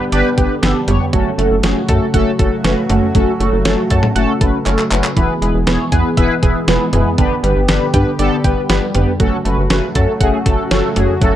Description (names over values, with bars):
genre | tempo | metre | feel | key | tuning
synth-pop | 119 BPM | 4/4 | straight | unclear | A4 = 443 Hz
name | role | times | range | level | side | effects
mellow synth brass | accompaniment | 0.0-11.4 s | A3 to C#5 | -17 LUFS | left 1 dB | chorus, phaser
chorused pulse-width pad | sustained chords | 0.0-11.4 s | C#3 to G#4 | -21 LUFS | equal | none
analog pluck | arpeggios | 0.0-11.4 s | D3 to F#5 | -24 LUFS | right 4 dB | chorus, analog delay
rubbery square bass | bass | 0.1-11.3 s | E1 to G2 | -18 LUFS | equal | none
clean 12-bit digital drum machine | drums | 0.1-11.3 s | handclaps, hi-hat, kick drum, snare drum, toms | -17 LUFS | equal | none
room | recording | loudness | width
light reverb | dark, warm production | -12 LUFS | side -12 dB against mid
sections
0.0-11.4 A section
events
drum fill 4.7-5.2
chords
0.0 G; 1.1 F#m; 5.2 E; 7.2 G; 9.2 F#m